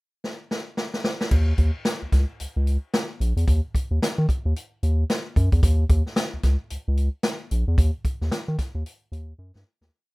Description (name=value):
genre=funk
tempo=111 BPM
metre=4/4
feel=swing 60% on 16ths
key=unclear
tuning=A4 = 442 Hz
part: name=swinging big-band drum kit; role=drums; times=0.2-9.9 s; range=crash cymbal, hi-hat, kick drum, snare drum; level=-23 LUFS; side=equal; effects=none
part: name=round analog bass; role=bass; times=1.3-9.9 s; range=Bb1 to Eb3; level=-21 LUFS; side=equal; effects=none
room=little or no reverb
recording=rough home demo mix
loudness=-21 LUFS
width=side -24 dB against mid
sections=0.0-1.3 pickup bar; 1.3-9.9 breakdown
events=drum fill 0.2-1.3, 9.4-9.9; fade-out 7.8-9.9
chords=none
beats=0.23 0.77 | 1.31 1.85 2.39 2.93 | 3.47 4.01 4.55 5.09 | 5.63 6.17 6.71 7.25 | 7.78 8.32 8.86 9.39